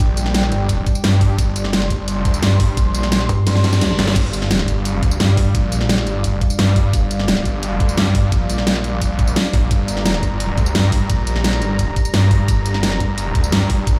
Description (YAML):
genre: dark technical drum and bass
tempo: 173 BPM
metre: 4/4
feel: straight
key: G minor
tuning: A4 = 440 Hz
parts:
  - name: dark analog pad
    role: sustained chords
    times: 0.0-14.0 s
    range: G3 to C6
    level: -26 LUFS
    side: equal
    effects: chorus, sidechain pumping
  - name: snarling distorted saw bass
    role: bass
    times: 0.0-14.0 s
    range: G1 to G2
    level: -21 LUFS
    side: equal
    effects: distortion, tube saturation, sidechain pumping
  - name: dubstep drum kit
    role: drums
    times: 0.0-13.9 s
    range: crash cymbal, hi-hat, snare drum, tambourine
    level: -23 LUFS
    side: equal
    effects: none
  - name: electronic kick drum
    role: drums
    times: 0.0-13.9 s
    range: none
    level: -20 LUFS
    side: equal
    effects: none
  - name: metallic wobble bass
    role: bass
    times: 3.3-4.0 s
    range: G2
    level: -18 LUFS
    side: equal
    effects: chorus
  - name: reverse cymbal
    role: sound effects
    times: 3.6-4.2 s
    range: none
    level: -31 LUFS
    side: equal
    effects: none
room: light reverb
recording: played on a big sound system in a bare room, large studio reverb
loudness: -17 LUFS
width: mono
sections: 0.0-14.0 A section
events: kick drops out 3.5-4.2; drum fill 3.5-4.2; reverse cymbal 3.6-4.2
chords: 0.0 G5